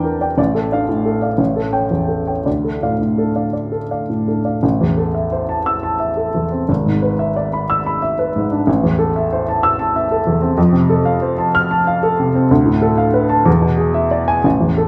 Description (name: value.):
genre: classical, romantic character piece for solo piano.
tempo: 54-65 BPM (dotted quarters).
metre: 6/8.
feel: rubato.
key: D minor, A minor from 4.6 s.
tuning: A4 = 440 Hz.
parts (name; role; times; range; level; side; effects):
warm upright piano; solo; 0.0-14.9 s; G#1 to F6; -17 LUFS; equal; none.
room: wet recital hall reverb, RT60 1.3 s.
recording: none.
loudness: -17 LUFS.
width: mono.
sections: 0.0-4.6 A section; 4.6-14.9 B section.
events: none.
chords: 0.4 Dm/A; 1.4 A7; 2.5 Dm; 4.6 Am; 6.7 E7/G#; 8.7 Am; 10.6 F; 12.5 Bm7b5/D; 13.5 E7.